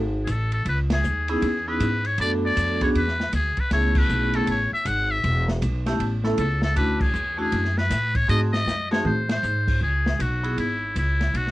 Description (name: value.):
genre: jazz, small-group swing and bop.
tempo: 157 BPM.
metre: 4/4.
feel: swing 64% on 8ths.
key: C# minor.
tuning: A4 = 440 Hz.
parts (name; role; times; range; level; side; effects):
upright bass; bass; 0.0-11.5 s; E1 to A2; -25 LUFS; equal; none.
trumpet with metal mute; melody; 0.2-11.5 s; E4 to F#5; -25 LUFS; left 1 dB; none.
open jazz drum kit; drums; 0.3-11.5 s; crash cymbal, hi-hat, kick drum, ride cymbal, snare drum, toms; -29 LUFS; equal; cassette tape.
vibraphone with medium hard mallets; accompaniment; 1.3-10.6 s; A3 to A4; -25 LUFS; equal; cassette tape.
room: light reverb.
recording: home recording on cassette.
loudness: -20 LUFS.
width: side -17 dB against mid.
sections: 0.0-9.8 A section; 9.8-11.5 B section.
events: band accent 0.8, 3.9, 7.0, 9.2; drum fill 8.7-9.4.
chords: 0.0 N.C.; 0.7 C#m9; 2.2 Bm9; 3.0 E5; 3.7 Amaj9; 5.2 Em; 6.0 Aadd9; 6.8 Dmaj7; 8.3 G#7b9; 9.8 C#m7.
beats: 0.28 | 0.66 1.04 1.42 1.80 | 2.19 2.57 2.95 3.33 | 3.71 4.09 4.48 4.86 | 5.24 5.62 6.00 6.38 | 6.76 7.15 7.53 7.91 | 8.29 8.67 9.05 9.43 | 9.81 10.20 10.58 10.96 | 11.34.